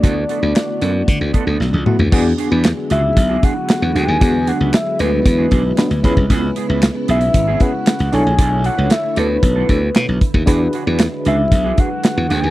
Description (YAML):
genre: early-eighties boogie funk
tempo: 115 BPM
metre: 4/4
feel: straight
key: unclear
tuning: A4 = 441 Hz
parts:
  - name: soft octave-layered synth lead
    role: melody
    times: 0.0-12.5 s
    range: B4 to G#5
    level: -21 LUFS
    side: left 1 dB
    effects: chorus, slapback echo
  - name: FM electric piano with tremolo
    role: accompaniment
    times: 0.0-12.5 s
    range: A3 to C#5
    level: -23 LUFS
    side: left 2 dB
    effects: none
  - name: soft string machine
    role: sustained chords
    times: 0.0-12.5 s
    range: C#3 to C#5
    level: -27 LUFS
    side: equal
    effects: phaser, ensemble chorus
  - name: mellow electric guitar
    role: riff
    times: 0.0-12.5 s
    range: B3 to B4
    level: -24 LUFS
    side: right 6 dB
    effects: analog chorus
  - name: glassy slap bass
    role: bass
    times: 0.0-12.5 s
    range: G#1 to D3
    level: -17 LUFS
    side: equal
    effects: none
  - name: modern studio drum kit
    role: drums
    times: 0.0-12.4 s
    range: crash cymbal, handclaps, hi-hat, kick drum, snare drum, toms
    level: -15 LUFS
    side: equal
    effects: none
room: little or no reverb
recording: dry, close 1970s-style studio recording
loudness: -13 LUFS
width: side -16 dB against mid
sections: 0.0-2.1 A section; 2.1-12.5 B section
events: drum fill 1.6-2.1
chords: 0.0 D6; 2.1 E9; 6.0 C#m7; 8.1 Bm11; 10.5 E9